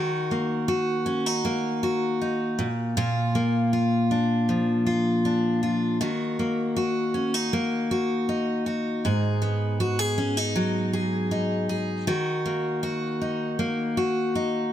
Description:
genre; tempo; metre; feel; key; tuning
pop; 79 BPM; 4/4; straight; Eb minor; A4 = 440 Hz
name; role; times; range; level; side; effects
picked steel-string acoustic guitar; solo; 0.0-14.7 s; Ab2 to Ab4; -23 LUFS; equal; none
room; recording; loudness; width
light reverb; none; -23 LUFS; side -11 dB against mid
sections
0.0-14.7 A section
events
none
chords
0.0 Ebm; 2.6 Bb; 6.0 Ebm; 9.0 Abm7; 12.1 Ebm

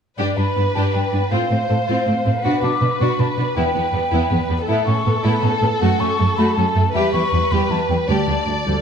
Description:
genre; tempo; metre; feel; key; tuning
cinematic; 106 BPM (dotted quarters); 6/8; straight; unclear; A4 = 440 Hz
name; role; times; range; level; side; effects
warm symphonic violin section; melody; 0.2-8.8 s; A4 to D5; -23 LUFS; left 2 dB; none
mellow hollow silver concert flute; second line; 0.2-8.7 s; D5 to D6; -23 LUFS; left 1 dB; none
warm symphonic violin section; second line; 0.2-8.8 s; G3 to A4; -27 LUFS; left 3 dB; none
rich studio viola section; accompaniment; 0.2-8.8 s; G3 to D4; -24 LUFS; right 2 dB; none
warm symphonic cello section; bass; 0.2-8.7 s; D2 to B2; -20 LUFS; right 2 dB; none
room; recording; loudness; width
moderate scoring stage reverb, RT60 1.6 s; dark, warm production; -16 LUFS; side -7 dB against mid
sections
0.2-8.8 A section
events
none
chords
0.2 G; 1.3 F/A; 2.4 Bm; 3.6 Em; 4.7 Aadd9; 5.8 F#m; 6.9 Em; 8.1 Dsus4

